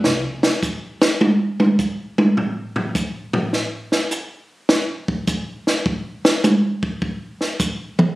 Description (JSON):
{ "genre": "jazz", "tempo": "103 BPM", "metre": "4/4", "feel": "swing 67% on 8ths", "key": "none", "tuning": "none", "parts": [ { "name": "compact cocktail drum kit", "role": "drums", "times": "0.0-8.1 s", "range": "hi-hat, kick drum, snare drum, toms", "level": "-17 LUFS", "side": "equal", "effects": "none" } ], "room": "moderate studio ambience, RT60 0.5 s", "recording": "recorded on a phone in the room, studio reverb, compression", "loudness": "-18 LUFS", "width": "side -18 dB against mid", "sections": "0.0-8.2 A section", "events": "drum solo 0.0-8.2", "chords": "none" }